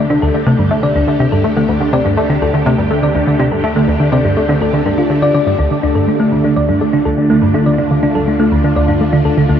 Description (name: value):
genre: ambient, sequencer-driven space music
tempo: 123 BPM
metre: 4/4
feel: straight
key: D minor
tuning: A4 = 440 Hz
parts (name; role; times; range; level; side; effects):
- phased string machine; sustained chords; 0.0-9.6 s; D3 to G4; -17 LUFS; equal; ensemble chorus, phaser, shimmer reverb
- tight sequenced synth; riff; 0.0-9.6 s; D2 to A3; -14 LUFS; equal; chorus, ping-pong delay
- analog drone; bass; 0.0-9.6 s; D2; -25 LUFS; equal; chorus
- thumb-piano-like synth pluck; arpeggios; 0.1-9.6 s; D3 to D5; -16 LUFS; moving between left 4 dB and right 3 dB; chorus, auto-pan, ping-pong delay, shimmer reverb
room: wet huge ambient reverb, RT60 8.7 s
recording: worn, warbling old tape, cassette tape, warbly pitch drift, nothing above 7.9 kHz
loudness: -11 LUFS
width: side -8 dB against mid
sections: 0.0-9.6 A section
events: none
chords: 0.0 Dm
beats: 0.23 0.71 1.20 | 1.69 2.18 2.67 3.15 | 3.64 4.13 4.62 5.10 | 5.59 6.08 6.57 7.05 | 7.54 8.03 8.52 9.01 | 9.49